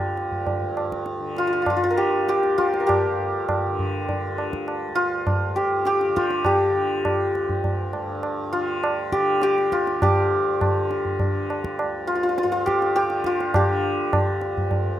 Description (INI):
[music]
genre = indian classical, Hindustani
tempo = 101 BPM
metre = 3/4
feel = straight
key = unclear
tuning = A4 = 441 Hz
[part]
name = santur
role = melody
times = 0.0-15.0 s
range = F4 to Bb4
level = -22 LUFS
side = equal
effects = none
[part]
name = tanpura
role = drone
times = 0.0-15.0 s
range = D2 to D3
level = -31 LUFS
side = equal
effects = none
[part]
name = tabla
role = percussion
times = 0.2-14.9 s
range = none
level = -25 LUFS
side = right 1 dB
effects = none
[sound]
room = light reverb, studio ambience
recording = rough home demo mix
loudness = -20 LUFS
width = side -12 dB against mid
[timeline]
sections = 0.0-10.0 A section; 10.0-15.0 B section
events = speeding up 0.0-15.0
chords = none